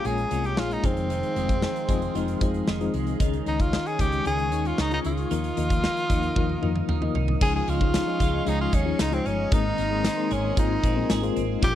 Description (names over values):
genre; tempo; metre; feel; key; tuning
1980s-style pop; 114 BPM; 4/4; straight; unclear; A4 = 440 Hz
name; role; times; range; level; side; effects
breathy tenor saxophone; melody; 0.0-11.8 s; C4 to Ab4; -28 LUFS; equal; slapback echo
FM electric piano with tremolo; accompaniment; 0.0-11.8 s; Eb3 to Ab5; -29 LUFS; left 8 dB; none
phased analog pad; sustained chords; 0.0-11.8 s; Ab4 to Eb6; -37 LUFS; left 1 dB; phaser, chorus
twelve-string electric guitar; riff; 0.0-11.8 s; Eb3 to Ab4; -33 LUFS; right 11 dB; lush chorus, slapback echo
woody fretless electric bass; bass; 0.0-11.8 s; F1 to F2; -29 LUFS; equal; none
big rock drum kit; drums; 0.0-11.7 s; crash cymbal, hi-hat, kick drum, snare drum, tambourine, toms; -26 LUFS; equal; none
room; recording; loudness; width
little or no reverb; dry, close 1970s-style studio recording; -22 LUFS; side -11 dB against mid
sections
0.0-7.4 A section; 7.4-11.8 B section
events
FM electric piano fill 1.6-3.2; drum fill 6.4-7.4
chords
0.0 Bbm7; 0.8 Fm7; 3.2 Dbsus2; 5.3 Ebsus2; 7.4 Dbadd9; 9.5 Abadd9